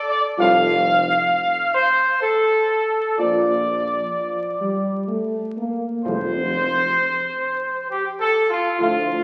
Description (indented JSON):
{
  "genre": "classical, ceremonial fanfare",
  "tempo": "64 BPM",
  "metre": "3/4",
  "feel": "uneven beats",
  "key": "F major",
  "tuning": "A4 = 439 Hz",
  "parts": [
    { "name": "warm trumpet section", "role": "melody", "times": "0.1-9.2 s", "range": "F4 to F5", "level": "-21 LUFS", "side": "equal", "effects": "none" },
    { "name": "mellow French horn section", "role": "sustained chords", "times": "0.4-9.1 s", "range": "F3 to F4", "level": "-29 LUFS", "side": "equal", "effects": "none" },
    { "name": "mellow trombone section", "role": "sustained chords", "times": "0.4-9.1 s", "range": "A2 to F3", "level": "-28 LUFS", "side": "equal", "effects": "none" },
    { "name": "mellow tuba", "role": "bass", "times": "0.4-9.2 s", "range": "F1 to D2", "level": "-32 LUFS", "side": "equal", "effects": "none" },
    { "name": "timpani", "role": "percussion", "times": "6.1-7.4 s", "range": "F2", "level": "-38 LUFS", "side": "equal", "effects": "none" }
  ],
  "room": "wet recital hall reverb, RT60 1.7 s",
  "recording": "very old 78 rpm record, vinyl crackle",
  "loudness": "-20 LUFS",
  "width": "mono",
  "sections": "0.0-9.2 A section",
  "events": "none",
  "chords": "0.4 Fadd9; 3.2 Bb; 6.0 Fadd9"
}